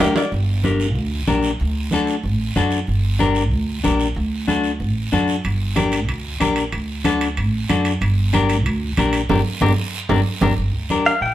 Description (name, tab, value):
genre	latin, cumbia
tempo	187 BPM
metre	4/4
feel	straight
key	G harmonic minor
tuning	A4 = 435 Hz
part	semi-hollow electric guitar	accompaniment	0.0-11.1 s	D4 to G5	-20 LUFS	left 4 dB	none
part	upright bass	bass	0.0-11.3 s	G1 to F#2	-21 LUFS	right 1 dB	none
part	congas	percussion	0.0-11.3 s	none	-25 LUFS	right 3 dB	none
part	guiro	percussion	0.0-11.3 s	none	-31 LUFS	right 5 dB	none
part	timbales	percussion	0.2, 5.4-10.5 s	none	-26 LUFS	right 3 dB	none
part	direct-recorded clean electric guitar	melody	11.1-11.3 s	F5 to G5	-16 LUFS	equal	spring reverb
room	moderate studio reverb, RT60 0.8 s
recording	heard from further back in the room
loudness	-17 LUFS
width	side -13 dB against mid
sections	0.3-10.6 A section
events	drum fill 0.0-0.3, 9.9-10.6; clean electric guitar fill 0.0-0.3; band accent 9.3-10.6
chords	0.3 Gm; 1.6 D; 2.9 Gm; 4.2 D; 5.4 Gm; 6.7 D; 8.0 Gm